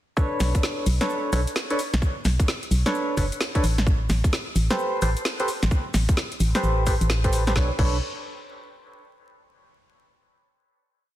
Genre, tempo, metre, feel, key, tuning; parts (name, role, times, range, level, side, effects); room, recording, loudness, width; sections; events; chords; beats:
UK garage, two-step garage; 130 BPM; 4/4; swing 63% on 16ths; B minor; A4 = 440 Hz
percussive organ stab; stabs; 0.2-8.0 s; D4 to C#5; -27 LUFS; equal; lush chorus, cassette tape, dub echo
electronic kick drum; drums; 0.2-7.9 s; -21 LUFS; equal; studio reverb
garage drum kit; drums; 0.2-7.9 s; crash cymbal, hi-hat, shaker, snare drum; -28 LUFS; equal; studio reverb
organ-like FM bass; bass; 0.4-8.0 s; F#1 to B1; -22 LUFS; equal; sidechain pumping
light reverb, digital ambience; dense, heavily limited modern master, vinyl crackle; -21 LUFS; side -14 dB against mid
0.2-7.6 drop; 7.6-9.4 final chord
drop 0.2-7.6
0.2 Bm9; 3.9 Am9; 7.6 Bm9
| 0.17 0.63 1.10 1.56 | 2.02 2.48 2.94 3.40 | 3.87 4.33 4.79 5.25 | 5.71 6.17 6.63 7.10 | 7.56